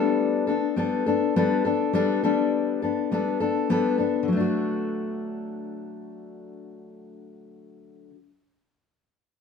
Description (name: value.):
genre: pop.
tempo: 102 BPM.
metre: 4/4.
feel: straight.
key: D major.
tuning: A4 = 440 Hz.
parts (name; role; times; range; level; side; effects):
fingerpicked steel-string acoustic guitar; accompaniment; 0.0-8.2 s; D3 to A4; -23 LUFS; left 4 dB; none.
room: wet studio reverb, RT60 0.9 s.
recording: heard from further back in the room.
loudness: -22 LUFS.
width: side -6 dB against mid.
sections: 0.0-4.3 A section; 4.3-6.6 B section.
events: none.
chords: 0.0 Gadd9; 4.3 D.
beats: 0.19 0.77 1.36 | 1.94 2.53 3.11 3.70 | 4.28 4.87 5.45 6.04.